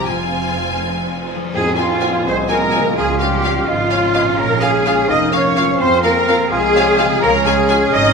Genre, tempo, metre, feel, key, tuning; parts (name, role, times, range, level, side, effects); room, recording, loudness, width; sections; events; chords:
cinematic, playful, whimsical film cue; 84 BPM (dotted quarters); 6/8; straight; F minor; A4 = 439 Hz
clear studio violin section; melody; 0.0-7.8 s; F5 to Ab5; -23 LUFS; left 3 dB
mellow clarinet; second line; 0.0-8.1 s; C4 to G4; -28 LUFS; left 2 dB
warm studio violin section; second line; 0.0-8.1 s; F4 to G5; -24 LUFS; left 2 dB
rich studio viola section; accompaniment; 0.0-7.8 s; C4 to F4; -27 LUFS; right 3 dB
concert harp; arpeggios; 0.0-8.1 s; Bb2 to Bb4; -28 LUFS; left 7 dB
rich studio double bass section; bass; 0.0-8.1 s; F1 to F2; -23 LUFS; right 4 dB
warm symphonic cello section; bass; 0.0-8.1 s; F2 to Eb5; -18 LUFS; right 2 dB
clear oboe; second line; 1.5-8.1 s; F5 to Ab5; -25 LUFS; right 4 dB
silver concert flute; second line; 1.5-8.0 s; F5 to Eb6; -23 LUFS; equal
warm bassoon; accompaniment; 1.5-8.1 s; Ab3 to F4; -23 LUFS; right 3 dB
dark French horn section; sustained chords; 1.5-8.1 s; F3 to Eb4; -22 LUFS; left 5 dB
tam-tam; percussion; 1.6-3.4 s; -29 LUFS; left 1 dB
moderate scoring stage reverb, RT60 1.5 s; minimal, uncompressed stereo recording; -13 LUFS; side -5 dB against mid
0.0-1.5 A section; 1.5-8.1 B section
band accent 1.5-2.0
0.1 Fm; 3.0 Db; 4.4 Bbm7; 5.8 Fm; 7.2 Db